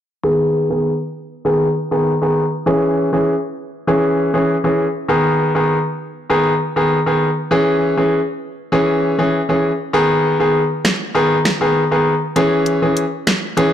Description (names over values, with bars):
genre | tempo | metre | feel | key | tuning
dancehall | 99 BPM | 4/4 | straight | G# minor | A4 = 439 Hz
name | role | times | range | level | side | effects
clear grand piano | accompaniment | 0.2-13.7 s | D#3 to G#4 | -14 LUFS | equal | low-pass filter
pop drum kit | drums | 10.8-13.7 s | finger snaps, hi-hat, snare drum | -19 LUFS | right 1 dB | none
room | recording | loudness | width
moderate plate reverb, RT60 1.7 s, studio reverb | blown-out, overdriven recording, overdrive | -14 LUFS | side -10 dB against mid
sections
0.2-9.9 A section; 9.9-13.7 B section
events
filter sweep on grand piano 0.2-9.9; kick muted 9.9-13.7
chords
0.2 G#m; 2.7 C#m; 5.1 G#m; 7.5 C#m; 9.9 G#m; 12.4 C#m